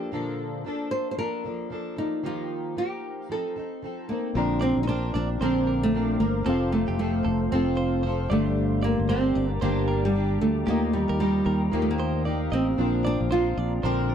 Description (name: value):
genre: acoustic pop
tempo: 114 BPM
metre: 4/4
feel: swing 60% on 16ths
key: Bb major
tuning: A4 = 440 Hz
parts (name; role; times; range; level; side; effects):
- nylon-string guitar; melody; 0.0-14.1 s; G3 to C5; -26 LUFS; right 1 dB; none
- fingerpicked plugged-in steel-string acoustic guitar; accompaniment; 0.0-14.1 s; G2 to Bb4; -30 LUFS; left 1 dB; double-tracked left and right
- bright reed electric piano; accompaniment; 4.3-14.1 s; G3 to Bb5; -37 LUFS; left 5 dB; none
- granular cloud pad; sustained chords; 5.3-14.1 s; A4 to Eb6; -38 LUFS; left 1 dB; built-in reverb
- fretless electric bass; bass; 4.4-14.1 s; F1 to Eb2; -27 LUFS; equal; none
- direct-recorded clean electric guitar; arpeggios; 4.6-14.1 s; G4 to Eb5; -35 LUFS; right 7 dB; none
room: light reverb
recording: dry, close 1970s-style studio recording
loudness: -23 LUFS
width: side -8 dB against mid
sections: 0.0-4.3 A section; 4.3-14.1 B section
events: none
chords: 0.0 Bbmaj7; 2.2 Ebadd9; 3.3 F7; 4.3 Bbadd9; 6.5 F; 8.3 Gm; 10.7 Ebadd9; 12.8 Bbadd9